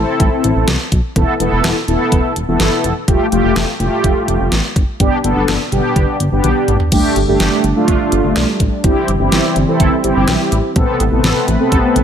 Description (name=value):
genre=synth-pop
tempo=125 BPM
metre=4/4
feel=straight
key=unclear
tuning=A4 = 440 Hz
part: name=mellow synth brass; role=accompaniment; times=0.0-12.0 s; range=A3 to A4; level=-15 LUFS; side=equal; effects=chorus
part: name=chorused synth bass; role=bass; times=0.0-12.0 s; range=E1 to C2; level=-18 LUFS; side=equal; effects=none
part: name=pop drum kit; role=drums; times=0.2-12.0 s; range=crash cymbal, hi-hat, kick drum, snare drum, toms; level=-17 LUFS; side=equal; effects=overdrive
part: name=warm analog pad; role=sustained chords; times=6.9-12.0 s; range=C3 to B4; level=-20 LUFS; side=right 1 dB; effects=chorus
room=light reverb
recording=none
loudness=-12 LUFS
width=side -8 dB against mid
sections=0.0-6.9 A section; 6.9-12.0 B section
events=drum fill 6.4-6.9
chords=0.0 Am; 1.2 Esus4; 3.1 Fadd9; 5.0 G; 6.9 Gsus2; 8.8 C/G; 10.8 Amadd9